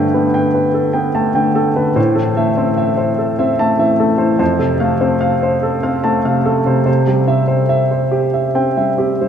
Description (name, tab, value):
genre	neoclassical minimalist piano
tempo	73 BPM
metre	3/4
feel	rubato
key	A minor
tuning	A4 = 443 Hz
part	warm grand piano	solo	0.0-9.3 s	F2 to A5	-13 LUFS	equal	none
room	wet cathedral reverb, RT60 5.0 s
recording	recorded in a church or concert hall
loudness	-13 LUFS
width	side -8 dB against mid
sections	0.0-9.3 A section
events	none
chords	0.0 Gadd9; 2.0 Am; 4.4 F; 6.9 C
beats	0.34 1.16 | 1.97 2.79 3.60 | 4.40 5.22 6.05 | 6.88 7.70 8.55